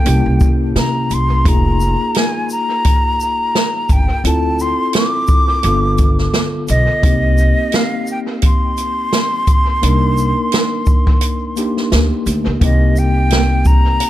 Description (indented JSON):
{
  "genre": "hip hop, jazz-hop",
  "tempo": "86 BPM",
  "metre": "4/4",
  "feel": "swing 57% on 16ths",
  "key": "C dorian",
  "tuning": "A4 = 440 Hz",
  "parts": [
    { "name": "breathy silver concert flute", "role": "melody", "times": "0.0-14.1 s", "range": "Eb5 to D6", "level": "-19 LUFS", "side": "left 1 dB", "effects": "analog delay" },
    { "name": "tine electric piano", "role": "accompaniment", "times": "0.0-14.1 s", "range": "D3 to Bb4", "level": "-20 LUFS", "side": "left 2 dB", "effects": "medium stereo tremolo, analog delay" },
    { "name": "upright bass", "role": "bass", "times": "0.1-14.0 s", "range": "F1 to C3", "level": "-16 LUFS", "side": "equal", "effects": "none" },
    { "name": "open jazz drum kit", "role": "drums", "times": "0.1-14.1 s", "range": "hi-hat, kick drum, shaker, snare drum", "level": "-15 LUFS", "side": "equal", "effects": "none" }
  ],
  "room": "light reverb, small room ambience",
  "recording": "echo-heavy mix",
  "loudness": "-12 LUFS",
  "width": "side -14 dB against mid",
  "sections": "0.0-12.6 A section; 12.6-14.1 B section",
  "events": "break 11.2-12.6",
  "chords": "0.1 C7b9; 1.5 Fm11; 4.2 Dm9; 5.6 G7; 7.0 Cm9; 12.6 Cm7"
}